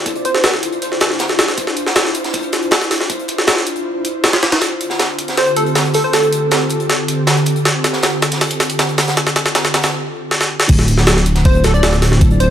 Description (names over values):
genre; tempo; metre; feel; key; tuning
drum and bass, jungle; 158 BPM; 4/4; straight; D minor; A4 = 439 Hz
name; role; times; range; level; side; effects
ethereal airy pad; sustained chords; 0.0-12.5 s; D3 to C5; -20 LUFS; equal; ensemble chorus, built-in reverb
crisp fusion drum kit; drums; 0.1-12.5 s; hi-hat, snare drum; -23 LUFS; equal; high-pass filter on hats, small room ambience, high-pass filter on snare, high-pass filter on room
jungle sampler-style drum kit; drums; 0.1-12.5 s; crash cymbal, hi-hat, kick drum, snare drum; -15 LUFS; equal; high-pass filter on kick, small room ambience, high-pass filter on hats, high-pass filter on snare, high-pass filter on cymbals
plucky unison lead; melody; 0.3-0.5, 5.4-6.7, 11.5-12.5 s; A4 to D5; -19 LUFS; right 1 dB; dub echo
dark detuned saw bass; bass; 10.7-12.5 s; D1; -13 LUFS; equal; none
room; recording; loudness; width
moderate echo chamber reverb, RT60 1.8 s; vinyl crackle; -13 LUFS; side -10 dB against mid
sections
0.0-10.7 A section; 10.7-12.5 B section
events
build-up 0.0-10.7; filter sweep on digital synth lead 0.0-10.7; drum fill 4.6-9.9, 10.3-10.7; break 9.9-10.7; drop 10.7-12.5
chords
0.0 Dm9; 4.6 Fadd9/D; 10.7 Dm9